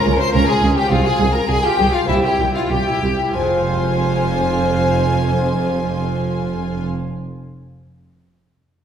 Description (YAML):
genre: classical, baroque-style concerto movement with solo episodes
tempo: 92-108 BPM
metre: 4/4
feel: straight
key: F minor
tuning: A4 = 442 Hz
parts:
  - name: rich studio violin section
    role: melody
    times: 0.0-6.9 s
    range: E5 to C6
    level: -25 LUFS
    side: left 6 dB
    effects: none
  - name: rich chamber violin section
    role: second line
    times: 0.0-6.9 s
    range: E4 to C5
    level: -23 LUFS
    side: left 2 dB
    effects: none
  - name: lute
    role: accompaniment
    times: 0.0-7.1 s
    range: F3 to C5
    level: -31 LUFS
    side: right 1 dB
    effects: none
  - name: rich symphonic viola section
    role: accompaniment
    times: 0.0-6.9 s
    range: Db4 to Ab4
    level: -24 LUFS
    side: right 2 dB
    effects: none
  - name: rich chamber double bass section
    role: bass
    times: 0.1-6.9 s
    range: F1 to Db2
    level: -22 LUFS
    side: right 2 dB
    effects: none
  - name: warm chamber cello section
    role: bass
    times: 0.1-6.9 s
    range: C2 to F2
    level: -22 LUFS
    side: right 2 dB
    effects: none
  - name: rich violin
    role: melody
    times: 0.2-6.9 s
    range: E4 to Ab5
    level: -24 LUFS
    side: equal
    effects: none
room: wet recital hall reverb, RT60 1.6 s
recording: heard from further back in the room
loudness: -15 LUFS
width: side -8 dB against mid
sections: 0.0-3.3 A section; 3.3-8.5 B section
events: slowing down 0.0-3.3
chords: 0.0 Bbm/Db; 0.9 Fm/C; 2.1 C7; 3.3 Fm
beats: 0.34 | 0.91 1.49 2.08 2.70 | 3.34 3.98 4.63 5.27 | 5.91 6.55